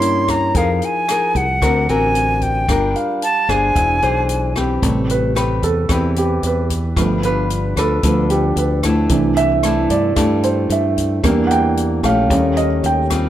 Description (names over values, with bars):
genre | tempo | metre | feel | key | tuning
bossa nova | 112 BPM | 4/4 | straight | A minor from 4.8 s | A4 = 440 Hz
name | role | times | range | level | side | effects
silver concert flute | melody | 0.0-4.6 s | F5 to C6 | -18 LUFS | right 1 dB | none
nylon-string guitar | accompaniment | 0.0-13.3 s | C3 to C5 | -20 LUFS | left 2 dB | none
warm grand piano | accompaniment | 0.0-13.3 s | C3 to G5 | -18 LUFS | right 2 dB | none
fingered electric bass | bass | 0.0-13.3 s | E1 to G2 | -20 LUFS | equal | none
open jazz drum kit | drums | 0.0-13.2 s | hi-hat, kick drum, rim click | -23 LUFS | equal | none
room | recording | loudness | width
moderate large studio reverb, RT60 1.3 s | none | -14 LUFS | side -12 dB against mid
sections
0.0-4.8 A section; 4.8-13.3 B section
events
grand piano solo 4.8-13.3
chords
0.0 C7b9; 0.6 Fm7; 1.6 D7b13; 2.7 Gm7; 3.8 E7b13; 4.8 Am9; 7.0 G7; 9.1 C69; 11.2 Em7b5; 12.3 D#7#11